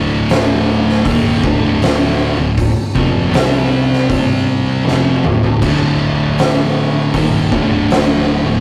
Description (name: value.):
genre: stoner and doom metal.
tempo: 79 BPM.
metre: 4/4.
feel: straight.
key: D minor.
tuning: A4 = 439 Hz.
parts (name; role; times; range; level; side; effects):
thick fuzz guitar; riff; 0.0-8.6 s; D2 to C4; -18 LUFS; equal; distortion.
thick fuzz guitar; riff; 0.0-8.6 s; D2 to C4; -22 LUFS; equal; distortion.
plucky analog bass; bass; 0.0-8.6 s; D1 to C2; -26 LUFS; equal; tube saturation.
oversized low-tuned drum kit; drums; 0.3-8.1 s; crash cymbal, hi-hat, kick drum, snare drum, toms; -18 LUFS; equal; none.
room: light reverb.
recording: rough rehearsal-room recording, warm saturation.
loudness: -14 LUFS.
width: mono.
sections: 0.0-8.6 A section.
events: drum fill 4.9-5.6.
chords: 0.0 Dm; 3.3 C5; 4.9 Dm.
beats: 0.30 1.06 1.82 | 2.58 3.35 4.11 4.87 | 5.62 6.38 7.14 7.90.